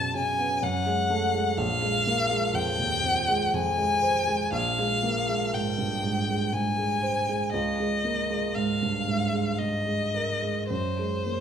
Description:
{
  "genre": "classical, impressionist duo for violin and grand piano",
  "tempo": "52-64 BPM",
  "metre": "3/4",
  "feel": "rubato",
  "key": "Ab major",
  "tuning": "A4 = 439 Hz",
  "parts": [
    { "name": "rich violin", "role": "melody", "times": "0.0-11.4 s", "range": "C5 to A5", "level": "-26 LUFS", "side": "left 2 dB", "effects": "none" },
    { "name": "warm grand piano", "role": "accompaniment", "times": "0.0-11.4 s", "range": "Bb1 to C5", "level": "-27 LUFS", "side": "right 2 dB", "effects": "none" }
  ],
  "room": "wet recital hall reverb, RT60 1.5 s",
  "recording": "minimal, uncompressed stereo recording",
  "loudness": "-24 LUFS",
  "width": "side -8 dB against mid",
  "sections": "0.0-11.4 A section",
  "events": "none",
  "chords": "0.0 Bsus2/F#; 0.6 F#madd9; 1.6 Bb9sus4; 4.5 Abmaj9/Bb; 7.5 Db69; 10.7 Gbadd9",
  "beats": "0.64 | 1.58 2.55 3.53 | 4.53 5.53 6.53 | 7.53 8.55 9.59 | 10.70"
}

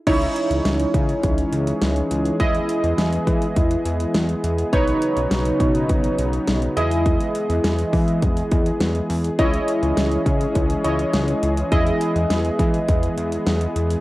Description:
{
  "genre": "synth-pop",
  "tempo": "103 BPM",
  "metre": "4/4",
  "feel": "straight",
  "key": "unclear",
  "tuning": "A4 = 445 Hz",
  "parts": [
    { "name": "warm analog keys", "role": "accompaniment", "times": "0.1-14.0 s", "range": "D#4 to D#5", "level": "-23 LUFS", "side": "right 1 dB", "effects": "chorus, cassette tape" },
    { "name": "warm analog pad", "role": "sustained chords", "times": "0.1-14.0 s", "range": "C#3 to G#4", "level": "-25 LUFS", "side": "left 1 dB", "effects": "chorus, cassette tape" },
    { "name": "fat analog bass", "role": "bass", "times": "0.1-14.0 s", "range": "B1 to E3", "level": "-23 LUFS", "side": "equal", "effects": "none" },
    { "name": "pop drum kit", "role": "drums", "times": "0.1-14.0 s", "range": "crash cymbal, hi-hat, kick drum, snare drum", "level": "-22 LUFS", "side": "equal", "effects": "none" }
  ],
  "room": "light reverb",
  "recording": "home recording on cassette",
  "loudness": "-18 LUFS",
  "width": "side -17 dB against mid",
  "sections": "0.1-14.0 A section",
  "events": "none",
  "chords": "0.1 C#madd9; 2.4 Emaj7; 4.7 Badd9; 6.8 Emaj7; 9.4 C#madd9; 11.7 Emaj7",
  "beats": "| 0.07 0.65 1.23 1.82 | 2.40 2.98 3.56 4.15 | 4.73 5.31 5.89 6.48 | 7.06 7.64 8.22 8.81 | 9.39 9.97 10.55 11.14 | 11.72 12.30 12.88 13.47"
}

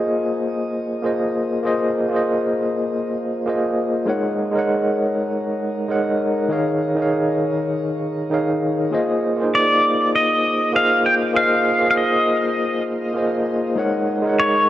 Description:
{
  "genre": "chillout",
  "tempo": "99 BPM",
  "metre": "4/4",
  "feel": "swing 57% on 16ths",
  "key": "unclear",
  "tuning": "A4 = 440 Hz",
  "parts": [
    { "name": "overdriven tine electric piano", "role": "accompaniment", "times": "0.0-14.7 s", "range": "Eb3 to Gb5", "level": "-19 LUFS", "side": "equal", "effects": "fast tremolo, auto-pan, shimmer reverb, tape echo" },
    { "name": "pedal steel guitar", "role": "melody", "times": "9.6-14.7 s", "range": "Db5 to G5", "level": "-17 LUFS", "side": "equal", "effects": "shimmer reverb, tape echo" }
  ],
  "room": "wet lush hall reverb, RT60 2.5 s",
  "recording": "worn, warbling old tape, cassette tape, warbly pitch drift",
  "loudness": "-17 LUFS",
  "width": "side -13 dB against mid",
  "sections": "0.0-14.7 A section",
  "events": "none",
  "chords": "0.0 Bb9sus4; 4.1 Ab9sus4; 6.5 Eb9sus4; 8.9 Bb9sus4; 13.8 Ab9sus4",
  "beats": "0.44 1.04 | 1.65 2.26 2.86 3.47 | 4.08 4.68 5.29 5.89 | 6.50 7.11 7.71 8.32 | 8.92 9.53 10.14 10.74 | 11.35 11.95 12.56 13.17 | 13.77 14.38"
}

